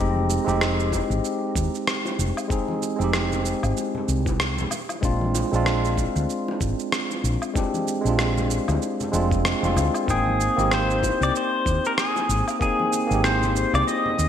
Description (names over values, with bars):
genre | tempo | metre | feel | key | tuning
sunset chillout | 95 BPM | 4/4 | swing 57% on 16ths | F dorian | A4 = 440 Hz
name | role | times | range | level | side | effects
bright tine electric piano | accompaniment | 0.0-14.3 s | Ab3 to G5 | -25 LUFS | moving between left 3 dB and right 4 dB | auto-pan, digital delay
woody fretless electric bass | bass | 0.0-14.3 s | F1 to Eb2 | -24 LUFS | equal | analog chorus
congas and bongos | percussion | 0.2-14.2 s | none | -36 LUFS | left 3 dB | none
electronic shaker, rim click and woodblock | drums | 0.3-14.3 s | none | -28 LUFS | right 1 dB | overdrive, studio reverb, gated reverb
electronic kick drum | drums | 0.9-12.8 s | none | -26 LUFS | equal | overdrive, studio reverb
pedal steel guitar | melody | 10.1-14.3 s | Ab4 to Eb5 | -23 LUFS | left 2 dB | ping-pong delay
room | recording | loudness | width
moderate lush hall reverb, RT60 2.3 s | bright 1980s-style digital production | -20 LUFS | side -9 dB against mid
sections
0.0-14.3 A section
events
none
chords
0.0 Fm9; 4.7 Bb9; 10.1 Abmaj9